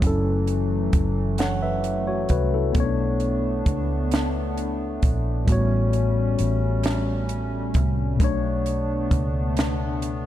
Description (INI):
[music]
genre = slow six-eight R&B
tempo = 44 BPM (dotted quarters)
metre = 6/8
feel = straight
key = B minor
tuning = A4 = 441 Hz
[part]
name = mellow tine electric piano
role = accompaniment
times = 0.0-10.3 s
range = A2 to F#5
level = -25 LUFS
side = moving between left 7 dB and equal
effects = auto-pan
[part]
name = hollow soft pad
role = sustained chords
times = 0.0-10.3 s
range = E3 to D4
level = -31 LUFS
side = right 2 dB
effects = chorus
[part]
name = vintage muted fingered electric bass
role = bass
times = 0.0-10.3 s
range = F#1 to C#2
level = -25 LUFS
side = right 1 dB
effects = none
[part]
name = compact cocktail drum kit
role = drums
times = 0.0-10.2 s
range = hi-hat, kick drum, snare drum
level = -24 LUFS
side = right 1 dB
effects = none
[sound]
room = light reverb, small room ambience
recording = none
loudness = -21 LUFS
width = side -12 dB against mid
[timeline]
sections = 0.0-10.3 A section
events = none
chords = 0.0 F#m7; 2.7 Bm9; 5.5 A13; 8.2 Bm9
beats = | 0.02 1.38 | 2.75 4.11 | 5.47 6.84 | 8.20 9.56